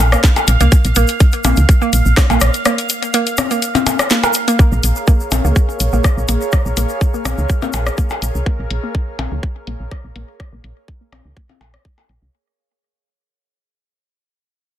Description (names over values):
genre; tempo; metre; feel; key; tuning
minimal techno; 124 BPM; 4/4; straight; Bb minor; A4 = 440 Hz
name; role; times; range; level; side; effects
woody FM bass; bass; 0.0-12.3 s; Bb1 to Db2; -15 LUFS; equal; sidechain pumping
electronic percussion blips and rim click; percussion; 0.0-12.1 s; none; -19 LUFS; left 4 dB; ping-pong delay
bubbling stepped-filter texture; texture; 0.0-12.3 s; Bb4 to F5; -26 LUFS; right 2 dB; chorus, built-in reverb, sidechain pumping
hollow square pluck; riff; 0.1-12.0 s; Bb3 to Bb4; -21 LUFS; right 3 dB; chorus, phaser, sidechain pumping, ping-pong delay
egg shaker; percussion; 0.1-8.4 s; none; -26 LUFS; left 4 dB; none
electronic kick drum; drums; 0.2-12.0 s; none; -13 LUFS; equal; none
garage drum kit; drums; 0.2-12.2 s; hi-hat, snare drum; -20 LUFS; left 2 dB; low-pass filter on hats, low-pass filter on snare
airy breathy pad; texture; 4.6-12.3 s; Ab4 to F5; -27 LUFS; right 4 dB; chorus, sidechain pumping
room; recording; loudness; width
digital ambience; dense, heavily limited modern master; -13 LUFS; side -11 dB against mid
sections
0.0-4.6 A section; 4.6-12.3 B section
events
drop 0.0-4.6; break 2.7-4.6; fade-out on analog synth pad 4.6-12.3; fade-out 4.6-12.3; filter sweep on synth arpeggio sound 4.6-12.3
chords
0.0 Bb5; 4.6 Bbm